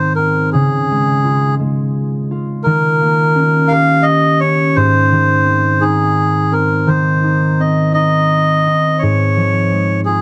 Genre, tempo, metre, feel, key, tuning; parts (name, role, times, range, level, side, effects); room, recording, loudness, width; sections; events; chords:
children's music, lullaby; 57 BPM (dotted quarters); 6/8; rubato; Db major; A4 = 439 Hz
melodica; melody; 0.0-10.2 s; Ab4 to F5; -17 LUFS; equal
concert harp; accompaniment; 0.0-10.2 s; Ab2 to Ab4; -16 LUFS; equal
studio reverb; dry, close 1970s-style studio recording; -14 LUFS; mono
0.0-10.2 A section
0.0 Ab; 0.5 Db; 2.6 Eb7; 4.8 Ab; 9.0 Db/Ab